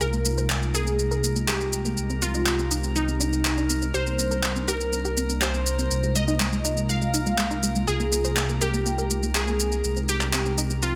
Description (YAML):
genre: progressive house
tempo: 122 BPM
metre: 4/4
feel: straight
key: unclear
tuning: A4 = 439 Hz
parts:
  - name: warm velvety synth lead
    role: melody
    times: 0.0-11.0 s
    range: Eb4 to F5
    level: -32 LUFS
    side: equal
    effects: chorus, cassette tape, delay
  - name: glassy wavetable pluck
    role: second line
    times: 0.0-11.0 s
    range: Eb4 to F5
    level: -36 LUFS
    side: equal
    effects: chorus, delay
  - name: warm analog pad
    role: sustained chords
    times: 0.0-11.0 s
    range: C3 to G4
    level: -34 LUFS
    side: equal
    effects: chorus
  - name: tight sequenced synth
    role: arpeggios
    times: 0.0-10.9 s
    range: Ab3 to C5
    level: -34 LUFS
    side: equal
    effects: chorus, delay
  - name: dark detuned saw bass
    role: bass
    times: 0.0-11.0 s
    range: C2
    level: -30 LUFS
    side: equal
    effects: none
  - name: electronic shaker and handclaps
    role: drums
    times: 0.0-10.9 s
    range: none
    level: -30 LUFS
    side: equal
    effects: overdrive
  - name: drifting glass-harmonics texture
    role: texture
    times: 0.0-11.0 s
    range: Bb4 to Bb5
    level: -41 LUFS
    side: equal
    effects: chorus, built-in reverb
room: light reverb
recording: none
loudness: -24 LUFS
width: mono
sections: 0.0-11.0 A section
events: filter sweep on synth arpeggio sound 0.0-11.0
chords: 0.0 Ab6/C; 2.0 Fm7/C; 3.9 Cm7; 5.9 Ab6/C; 9.8 Fm7/C